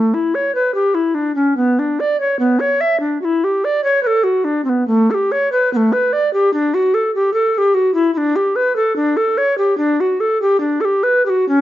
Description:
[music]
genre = classical, baroque-style fantasia for unaccompanied recorder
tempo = 73 BPM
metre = 4/4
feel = rubato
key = D major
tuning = A4 = 443 Hz
[part]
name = mellow bass recorder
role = solo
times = 0.0-11.6 s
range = A3 to E5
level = -14 LUFS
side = equal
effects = none
[sound]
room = moderate stone room reverb, RT60 1.0 s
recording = dark, warm production, nothing above 7.5 kHz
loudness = -14 LUFS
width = side -13 dB against mid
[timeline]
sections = 0.0-11.6 A section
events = none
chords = none

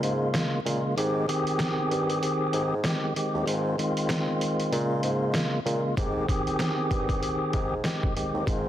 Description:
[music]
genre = hip hop, boom-bap hip-hop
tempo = 96 BPM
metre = 4/4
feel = swing 59% on 16ths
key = Ab major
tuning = A4 = 439 Hz
[part]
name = tonewheel organ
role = accompaniment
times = 0.0-8.7 s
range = Db3 to Ab4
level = -26 LUFS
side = equal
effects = overdrive, fast rotary speaker, cassette tape
[part]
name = mellow bassoon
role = bass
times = 0.0-8.7 s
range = Eb2 to Bb2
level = -30 LUFS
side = equal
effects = none
[part]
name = trip hop sampler-style drum kit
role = drums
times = 0.0-8.6 s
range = hi-hat, kick drum, snare drum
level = -30 LUFS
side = equal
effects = none
[sound]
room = light reverb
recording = dense, heavily limited modern master, vinyl crackle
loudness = -24 LUFS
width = side -11 dB against mid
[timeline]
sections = 0.0-8.7 A section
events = break 0.0-6.0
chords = 0.0 Bbm7; 1.0 Abmaj7; 3.5 Fm7/Ab; 4.7 Bbm7; 6.0 Abmaj7

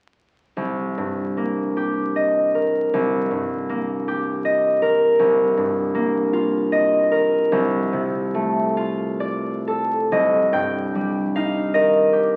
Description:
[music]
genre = classical, solo harp piece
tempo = 42-54 BPM (dotted quarters)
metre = 6/8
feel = rubato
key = C dorian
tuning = A4 = 440 Hz
[part]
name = concert harp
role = solo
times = 0.6-12.4 s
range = C2 to G5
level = -21 LUFS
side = equal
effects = none
[sound]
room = wet recital hall reverb, RT60 1.5 s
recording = very old 78 rpm record, vinyl crackle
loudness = -21 LUFS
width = mono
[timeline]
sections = 0.6-10.1 A section; 10.1-12.4 B section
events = none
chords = 0.6 Cm7; 7.5 Dm7/C; 10.1 Cm7

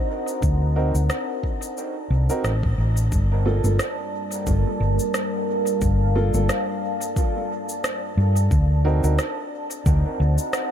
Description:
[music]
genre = ambient dub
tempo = 89 BPM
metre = 4/4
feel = swing 56% on 16ths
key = G minor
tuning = A4 = 440 Hz
[part]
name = deep dark ambient pad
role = sustained chords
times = 0.0-10.7 s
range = G3 to Bb5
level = -27 LUFS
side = equal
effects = chorus, built-in reverb
[part]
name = electronic cabasa and rim click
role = drums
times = 0.3-10.7 s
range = none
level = -30 LUFS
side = equal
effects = dub echo
[part]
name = hollow-body short-scale fingered electric bass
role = bass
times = 0.4-10.4 s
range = G1 to G2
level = -19 LUFS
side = equal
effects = none
[part]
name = electronic kick drum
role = drums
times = 0.4-10.0 s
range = none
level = -23 LUFS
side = equal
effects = none
[part]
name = dark upright piano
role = stabs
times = 0.8-9.2 s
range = Bb3 to Bb4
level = -30 LUFS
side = right 2 dB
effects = dub echo
[sound]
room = little or no reverb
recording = none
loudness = -20 LUFS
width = side -10 dB against mid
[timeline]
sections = 0.0-3.1 A section; 3.1-10.7 B section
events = band accent 2.4-2.8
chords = 0.0 D7b9b13; 3.1 Gm9; 8.5 D7b9b13

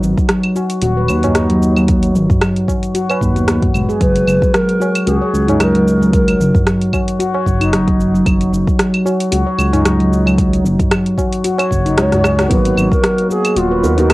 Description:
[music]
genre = organic downtempo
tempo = 113 BPM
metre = 4/4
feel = swing 55% on 16ths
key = G# minor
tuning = A4 = 444 Hz
[part]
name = handpan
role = arpeggios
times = 0.0-14.1 s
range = F#3 to C#5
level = -16 LUFS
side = equal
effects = cassette tape, analog delay
[part]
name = smooth gliding synth bass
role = bass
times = 0.0-14.1 s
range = D#1 to D#2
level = -16 LUFS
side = equal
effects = sidechain pumping
[part]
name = afro-pop drum kit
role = drums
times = 0.0-14.1 s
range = claves, hi-hat, rim click, shaker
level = -19 LUFS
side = right 1 dB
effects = cassette tape
[part]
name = electronic kick drum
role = drums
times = 0.2-13.0 s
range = none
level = -17 LUFS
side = equal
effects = cassette tape
[part]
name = tabla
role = percussion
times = 0.6-12.5 s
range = none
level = -22 LUFS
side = right 1 dB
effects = none
[part]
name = bright bass bansuri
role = melody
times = 4.0-6.6, 12.0-14.1 s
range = E#4 to C#5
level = -18 LUFS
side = equal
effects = cassette tape, analog delay
[part]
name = felt-muted upright piano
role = accompaniment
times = 12.5-14.1 s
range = A#3 to A#4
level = -19 LUFS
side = right 2 dB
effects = sidechain pumping, cassette tape
[sound]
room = moderate studio reverb, RT60 0.6 s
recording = home recording on cassette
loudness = -12 LUFS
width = side -19 dB against mid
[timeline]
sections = 0.0-12.5 A section; 12.5-14.1 B section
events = kick drops out 12.0-12.5; drum fill 12.1-12.5; band accent 12.4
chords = 0.0 G#7(no3); 4.0 F#5; 12.5 G#m7

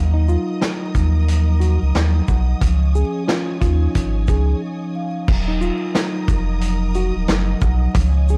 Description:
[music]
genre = hip hop, boom-bap hip-hop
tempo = 90 BPM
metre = 4/4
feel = swing 61% on 16ths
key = Eb minor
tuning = A4 = 440 Hz
[part]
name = vibraphone with soft mallets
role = accompaniment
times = 0.0-8.4 s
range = F3 to Gb5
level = -28 LUFS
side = equal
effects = cassette tape, high-pass filter, low-pass filter
[part]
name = rich studio string section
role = sustained chords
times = 0.0-8.4 s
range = Bb4 to Eb6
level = -37 LUFS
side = equal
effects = high-pass filter, low-pass filter
[part]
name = warm sub bass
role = bass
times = 0.0-8.4 s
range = Eb1 to Eb2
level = -19 LUFS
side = equal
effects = none
[part]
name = nylon-string guitar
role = melody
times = 0.1-8.4 s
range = Eb4 to Ab4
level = -29 LUFS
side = equal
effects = high-pass filter, low-pass filter
[part]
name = vintage drum kit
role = drums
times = 0.3-8.4 s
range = crash cymbal, hi-hat, kick drum, shaker, snare drum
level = -23 LUFS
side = equal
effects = none
[sound]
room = little or no reverb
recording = dry, gritty hardware recording, vinyl crackle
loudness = -19 LUFS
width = mono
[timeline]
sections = 0.0-5.3 A section; 5.3-8.4 B section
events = break 4.6-5.3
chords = 0.0 Ebmadd9; 2.6 Dbadd9; 5.3 Ebmadd9

